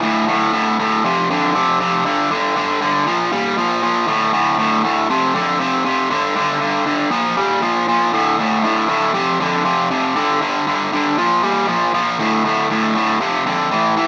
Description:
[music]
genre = rock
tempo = 118 BPM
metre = 4/4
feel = straight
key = D minor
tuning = A4 = 440 Hz
[part]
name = biting overdriven guitar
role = solo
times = 0.0-14.1 s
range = D2 to G3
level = -14 LUFS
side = equal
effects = none
[sound]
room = moderate studio ambience, RT60 0.5 s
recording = band playing live in one room, small speaker sound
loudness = -14 LUFS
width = side -28 dB against mid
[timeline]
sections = 0.0-14.1 A section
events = none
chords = 0.0 D5; 1.0 F5; 2.1 G5; 3.1 Bb5; 4.1 D5; 5.1 F5; 6.1 G5; 7.1 Bb5; 8.1 D5; 9.1 F5; 10.2 G5; 11.2 Bb5; 12.2 D5; 13.2 F5

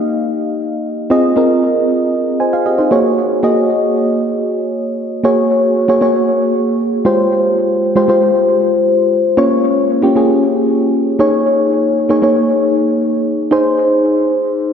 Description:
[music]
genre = pop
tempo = 116 BPM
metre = 4/4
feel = straight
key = unclear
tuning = A4 = 438 Hz
[part]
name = mellow FM electric piano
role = solo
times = 0.0-14.7 s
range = Ab3 to Ab5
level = -12 LUFS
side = equal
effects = chorus, tape echo
[sound]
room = wet plate reverb, RT60 3.4 s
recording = dreamy mix soaked in reverb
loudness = -11 LUFS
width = side -7 dB against mid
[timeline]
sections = 0.0-5.2 A section; 5.2-13.5 B section; 13.5-14.7 C section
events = none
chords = 0.0 Eb; 1.1 Fm7; 2.9 Gbadd9; 7.1 Fmadd9; 9.4 Bbm; 11.2 Eb7sus4; 13.5 Ab

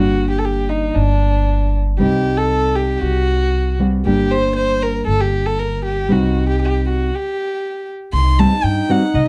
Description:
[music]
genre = klezmer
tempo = 117 BPM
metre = 2/4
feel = straight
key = unclear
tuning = A4 = 439 Hz
[part]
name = warm violin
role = melody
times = 0.0-9.3 s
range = D4 to C6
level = -22 LUFS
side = equal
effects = none
[part]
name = nylon-string guitar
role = accompaniment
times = 0.0-9.0 s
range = G3 to F#4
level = -22 LUFS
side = equal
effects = none
[part]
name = upright bass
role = bass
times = 0.0-9.3 s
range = G1 to G2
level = -21 LUFS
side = equal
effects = none
[part]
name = warm trombone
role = second line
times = 8.2-9.3 s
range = Eb4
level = -24 LUFS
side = equal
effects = none
[sound]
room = moderate studio ambience, RT60 0.5 s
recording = dark, warm production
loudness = -17 LUFS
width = mono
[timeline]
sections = 0.0-8.1 A section; 8.1-9.3 B section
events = stop 7.1-8.1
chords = 0.0 Gm; 2.0 Cm; 4.1 Gm; 6.1 Cm; 7.1 N.C.; 8.1 Cm

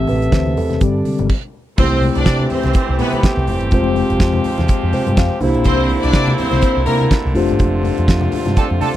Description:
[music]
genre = disco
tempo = 124 BPM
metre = 4/4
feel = swing 56% on 16ths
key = C major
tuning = A4 = 440 Hz
[part]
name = mellow tine electric piano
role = accompaniment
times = 0.0-9.0 s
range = D3 to F5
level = -20 LUFS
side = left 2 dB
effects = slow stereo tremolo
[part]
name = muted French horn section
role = sustained chords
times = 0.0-9.0 s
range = C3 to E5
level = -23 LUFS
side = right 3 dB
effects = none
[part]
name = picked electric bass with an envelope filter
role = bass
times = 0.0-9.0 s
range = F1 to C3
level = -19 LUFS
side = equal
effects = none
[part]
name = damped 70s drum kit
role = drums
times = 0.1-9.0 s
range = crash cymbal, hi-hat, kick drum, snare drum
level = -16 LUFS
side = right 1 dB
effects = none
[part]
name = congas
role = percussion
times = 0.1-8.9 s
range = none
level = -26 LUFS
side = left 4 dB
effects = none
[part]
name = clear studio string section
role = second line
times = 1.8-7.1 s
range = Bb3 to D5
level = -20 LUFS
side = equal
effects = none
[part]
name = clear horn section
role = stabs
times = 8.6-8.9 s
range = C4 to A4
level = -20 LUFS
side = right 6 dB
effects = none
[sound]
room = small room ambience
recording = dry, close 1970s-style studio recording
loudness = -13 LUFS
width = side -13 dB against mid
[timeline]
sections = 0.0-1.8 A section; 1.8-9.0 B section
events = stop 1.3-1.8; band accent 7.6-9.0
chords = 0.0 Am7; 0.8 Gsus4; 1.8 C6; 3.7 Fmadd9; 5.4 C9; 7.4 F69

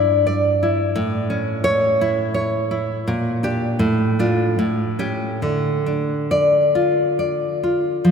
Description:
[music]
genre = romantic piece for solo classical guitar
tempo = 68-90 BPM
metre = 3/4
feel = rubato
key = D minor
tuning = A4 = 441 Hz
[part]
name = nylon-string guitar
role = solo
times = 0.0-8.1 s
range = G2 to D5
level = -17 LUFS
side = equal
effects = none
[sound]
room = wet cathedral reverb, RT60 4.2 s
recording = recorded in a church or concert hall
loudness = -17 LUFS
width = side -6 dB against mid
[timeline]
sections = 0.0-8.0 A section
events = none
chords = 0.0 Em7/G; 1.0 A; 3.1 Gm/Bb; 3.8 Dm/A; 4.6 A7; 5.4 Dm

